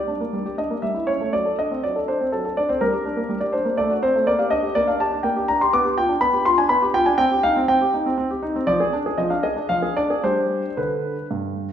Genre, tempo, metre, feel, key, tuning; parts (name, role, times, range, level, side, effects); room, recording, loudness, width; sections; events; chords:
classical-period piano sonatina; 121 BPM; 3/4; rubato; G minor; A4 = 439 Hz
warm concert grand piano; solo; 0.0-11.7 s; G2 to D6; -19 LUFS; equal
wet recital hall reverb, RT60 1.8 s; recorded in a church or concert hall; -19 LUFS; side -9 dB against mid
0.0-11.7 A section
0.0 Gm; 0.8 A7/G; 1.3 D7/F#; 2.8 Gm; 3.8 F#dim/A; 4.3 Gm/Bb; 5.7 G7/B; 7.2 Cm; 8.7 Ddim/F; 10.2 G